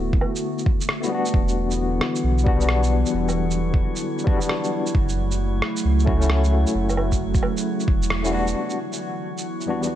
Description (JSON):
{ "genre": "future garage", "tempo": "133 BPM", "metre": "4/4", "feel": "swing 64% on 16ths", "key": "E dorian", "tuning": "A4 = 440 Hz", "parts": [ { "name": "barky tine electric piano", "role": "accompaniment", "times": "0.0-10.0 s", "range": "E2 to F#4", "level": "-26 LUFS", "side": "left 4 dB", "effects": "fast tremolo, sidechain pumping, tape echo" }, { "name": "warbly tape-like pad", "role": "sustained chords", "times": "0.0-10.0 s", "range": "C#3 to F#4", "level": "-28 LUFS", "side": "equal", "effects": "chorus, built-in reverb, sidechain pumping" }, { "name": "warm sub bass", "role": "bass", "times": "0.0-8.5 s", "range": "D1 to C#2", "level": "-22 LUFS", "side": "equal", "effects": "tube saturation, sidechain pumping" }, { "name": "electronic kick drum", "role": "drums", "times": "0.1-8.0 s", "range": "none", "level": "-21 LUFS", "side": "equal", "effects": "vintage 12-bit sampler grit, small room ambience" }, { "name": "electronic woodblock, shaker and rim click", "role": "drums", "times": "0.2-9.9 s", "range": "none", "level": "-28 LUFS", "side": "right 1 dB", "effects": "vintage 12-bit sampler grit, small room ambience" }, { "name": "drifting glass-harmonics texture", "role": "texture", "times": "2.0-10.0 s", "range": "F#3 to F#4", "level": "-33 LUFS", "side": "right 6 dB", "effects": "chorus, built-in reverb" } ], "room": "light reverb, digital ambience", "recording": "none", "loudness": "-19 LUFS", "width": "side -12 dB against mid", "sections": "0.0-8.6 A section; 8.6-10.0 B section", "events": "band accent 8.1", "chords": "0.0 D6; 1.3 Em7; 4.9 F#m7; 8.6 Em7" }